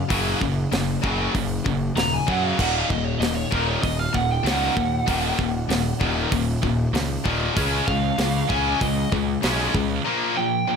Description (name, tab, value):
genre	heavy metal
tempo	96 BPM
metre	4/4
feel	straight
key	Eb minor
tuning	A4 = 440 Hz
part	lead guitar through a small cranked amp	melody	0.0-10.8 s	Bb4 to Bb5	-27 LUFS	right 2 dB	overdrive, digital delay
part	scooped high-gain guitar	riff	0.0-10.8 s	Eb2 to Db4	-27 LUFS	right 11 dB	distortion
part	tight distorted guitar	riff	0.0-10.8 s	Eb2 to Db4	-26 LUFS	left 12 dB	distortion
part	fuzz picked electric bass	bass	0.0-10.0 s	Eb1 to Gb2	-26 LUFS	equal	overdrive
part	tight metal drum kit	drums	0.1-9.9 s	crash cymbal, hi-hat, kick drum, snare drum	-27 LUFS	equal	none
room	small room ambience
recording	none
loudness	-20 LUFS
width	side -6 dB against mid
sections	0.0-10.8 A section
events	lead electric guitar solo 0.0-10.8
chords	0.0 Gb5; 2.6 Ebm; 7.6 Db; 10.1 Bb5